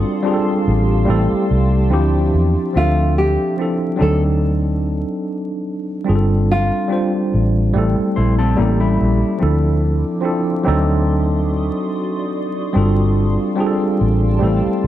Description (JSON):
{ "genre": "lo-fi hip hop", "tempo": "72 BPM", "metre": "4/4", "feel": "swing 56% on 16ths", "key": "D minor", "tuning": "A4 = 440 Hz", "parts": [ { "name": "tine electric piano", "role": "accompaniment", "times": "0.0-14.9 s", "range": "E3 to E5", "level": "-18 LUFS", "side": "equal", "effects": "overdrive, medium stereo tremolo, low-pass filter" }, { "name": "granular cloud pad", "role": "sustained chords", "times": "0.0-2.7, 9.9-14.9 s", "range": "F3 to Eb6", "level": "-28 LUFS", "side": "left 1 dB", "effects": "built-in reverb, low-pass filter" }, { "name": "vintage muted fingered electric bass", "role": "bass", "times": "0.0-14.9 s", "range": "G1 to E2", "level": "-16 LUFS", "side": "equal", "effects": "none" }, { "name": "nylon-string guitar", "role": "melody", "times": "2.8-7.1 s", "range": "F4 to A4", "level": "-21 LUFS", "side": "left 1 dB", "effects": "low-pass filter" }, { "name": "mellow electric guitar", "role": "second line", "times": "8.2-9.4 s", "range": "G3 to C5", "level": "-23 LUFS", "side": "left 5 dB", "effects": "low-pass filter, analog delay" } ], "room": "light reverb", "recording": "dark, warm production, vinyl crackle", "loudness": "-15 LUFS", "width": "side -12 dB against mid", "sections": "0.0-2.7 A section; 2.7-14.9 B section", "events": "none", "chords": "0.0 G9sus4; 1.1 Am7; 1.9 Dm11; 2.7 Dm9; 4.0 D7b9; 6.1 G9sus4; 7.7 Am7; 8.6 A7b9; 9.4 Dm9; 10.7 D7b9; 12.7 G9sus4", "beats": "0.24 1.08 1.91 | 2.75 3.58 4.41 5.25 | 6.08 6.91 7.75 8.58 | 9.41 10.24 11.08 11.91 | 12.74 13.58 14.41" }